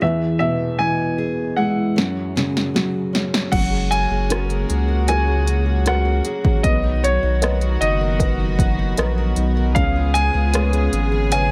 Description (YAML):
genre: pop ballad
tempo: 77 BPM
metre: 4/4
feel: straight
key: F# major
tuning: A4 = 440 Hz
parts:
  - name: clear baby grand piano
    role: melody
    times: 0.0-11.5 s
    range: C#5 to G#5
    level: -26 LUFS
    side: equal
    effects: digital delay
  - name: felt-muted upright piano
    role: accompaniment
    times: 0.0-11.5 s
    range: E2 to E#5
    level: -27 LUFS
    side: equal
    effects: none
  - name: picked steel-string acoustic guitar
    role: arpeggios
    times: 0.0-11.5 s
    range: B2 to A#4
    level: -30 LUFS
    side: equal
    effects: digital delay
  - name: deep house drum kit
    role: drums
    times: 2.0-11.5 s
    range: crash cymbal, hi-hat, kick drum, rim click, snare drum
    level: -24 LUFS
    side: equal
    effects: none
  - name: warm studio string section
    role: sustained chords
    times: 3.5-11.5 s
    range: C#3 to G#4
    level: -29 LUFS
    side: equal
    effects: none
  - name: saturated sub bass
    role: bass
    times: 3.5-11.5 s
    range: F#1 to C#2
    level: -22 LUFS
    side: equal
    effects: none
room: small room ambience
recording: none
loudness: -19 LUFS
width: mono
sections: 0.0-3.5 A section; 3.5-11.5 B section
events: drum fill 2.0-3.5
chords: 0.0 E; 2.0 F#sus2; 3.5 F#add9; 6.6 Bmaj7; 9.8 C#7